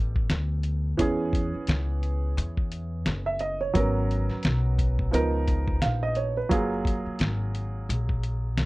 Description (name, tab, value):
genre	hip hop, jazz-hop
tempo	87 BPM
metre	4/4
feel	swing 58% on 16ths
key	unclear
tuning	A4 = 441 Hz
part	dark grand piano	accompaniment	0.0-8.7 s	E3 to E#5	-29 LUFS	right 2 dB	none
part	upright bass	bass	0.0-8.7 s	F#1 to E2	-27 LUFS	left 1 dB	none
part	lo-fi sampler-style drum kit	drums	0.2-8.7 s	hi-hat, kick drum, snare drum	-27 LUFS	equal	none
room	little or no reverb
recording	dry, close 1970s-style studio recording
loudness	-24 LUFS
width	side -20 dB against mid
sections	0.0-8.7 A section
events	none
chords	0.0 B7alt; 1.0 E6; 3.8 G#m11; 5.1 C#13; 6.5 F#maj9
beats	0.30 | 0.99 1.68 2.37 3.06 | 3.75 4.44 5.13 5.82 | 6.51 7.20 7.89 8.58